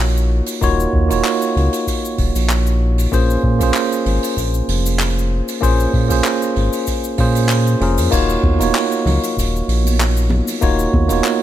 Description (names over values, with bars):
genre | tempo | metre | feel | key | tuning
sunset chillout | 96 BPM | 4/4 | swing 54% on 16ths | Eb dorian | A4 = 440 Hz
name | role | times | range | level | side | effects
tine electric piano | accompaniment | 0.0-11.4 s | Bb3 to Db5 | -18 LUFS | moving between left 4 dB and right 7 dB | auto-pan, tape echo
round analog bass | bass | 0.0-11.2 s | Eb1 to Bb2 | -17 LUFS | equal | none
jazz brush drum kit | drums | 0.2-11.4 s | cabasa, crash cymbal, handclaps, hi-hat | -24 LUFS | right 1 dB | none
electronic kick drum | drums | 0.6-11.1 s | none | -20 LUFS | equal | overdrive
congas | percussion | 8.4-11.2 s | none | -25 LUFS | right 2 dB | none
room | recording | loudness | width
small room ambience | none | -14 LUFS | side -12 dB against mid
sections
0.0-11.4 A section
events
kick drops out 7.5-8.1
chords
0.0 Ebm9; 3.1 Bbm9; 8.1 Ebm9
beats
0.00 | 0.62 1.25 1.87 2.50 | 3.12 3.75 4.37 5.00 | 5.62 6.25 6.87 7.50 | 8.12 8.75 9.37 10.00 | 10.62 11.25